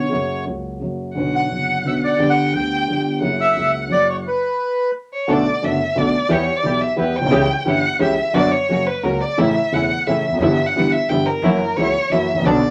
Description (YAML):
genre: tango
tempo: 176 BPM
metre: 3/4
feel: rubato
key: B minor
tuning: A4 = 440 Hz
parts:
  - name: bandoneon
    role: melody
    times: 0.0-4.9 s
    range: B4 to G5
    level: -21 LUFS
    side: equal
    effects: none
  - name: warm concert grand piano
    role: accompaniment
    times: 0.0-12.6 s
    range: E1 to G4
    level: -22 LUFS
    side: equal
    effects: none
  - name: upright bass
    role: bass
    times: 0.0-12.6 s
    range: E1 to E2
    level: -37 LUFS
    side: equal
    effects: none
  - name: rich violin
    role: second line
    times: 1.2-12.7 s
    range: A#4 to G5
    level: -24 LUFS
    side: equal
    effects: none
  - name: dark studio string section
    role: stabs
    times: 5.3-12.6 s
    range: F#3 to A4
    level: -27 LUFS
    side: equal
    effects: none
room: moderate club reverb, RT60 0.6 s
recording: none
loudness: -19 LUFS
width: mono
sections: 0.0-5.3 A section; 5.3-12.7 B section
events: stop 4.2-5.3; violin solo 5.3-12.7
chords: 0.1 F#; 1.2 Bmadd9; 2.2 G; 3.2 F#7; 4.2 N.C.; 5.3 Bm7; 6.3 Em; 7.3 C#dim; 8.3 Bm/F#; 8.7 F#; 9.4 A; 10.4 Em/G; 11.4 F#7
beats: | 0.12 0.46 0.81 | 1.16 1.50 1.85 | 2.19 2.54 2.88 | 3.21 3.56 3.90 | 4.24 4.58 4.93 | 5.28 5.63 5.97 | 6.31 6.64 6.98 | 7.32 7.66 8.00 | 8.34 8.69 9.04 | 9.38 9.73 10.07 | 10.41 10.75 11.09 | 11.43 11.77 12.11 | 12.45